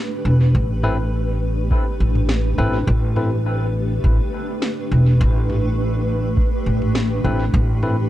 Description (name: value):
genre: ambient dub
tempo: 103 BPM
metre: 4/4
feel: swing 54% on 16ths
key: unclear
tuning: A4 = 441 Hz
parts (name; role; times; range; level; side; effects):
- granular cloud pad; sustained chords; 0.0-8.1 s; A3 to B4; -25 LUFS; equal; built-in reverb
- upright bass; bass; 0.2-8.1 s; E1 to A1; -18 LUFS; equal; none
- electronic kick drum; drums; 0.5-7.7 s; none; -20 LUFS; equal; small room ambience
- barky tine electric piano; stabs; 0.8-3.3, 7.2-8.0 s; C4 to B4; -27 LUFS; left 2 dB; dub echo
- organic electronic drum kit; drums; 0.8-8.0 s; snare drum, toms; -26 LUFS; equal; small room ambience, dub echo
room: little or no reverb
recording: dark, warm production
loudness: -17 LUFS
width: side -14 dB against mid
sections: 0.0-8.1 A section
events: none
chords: 0.0 Asus2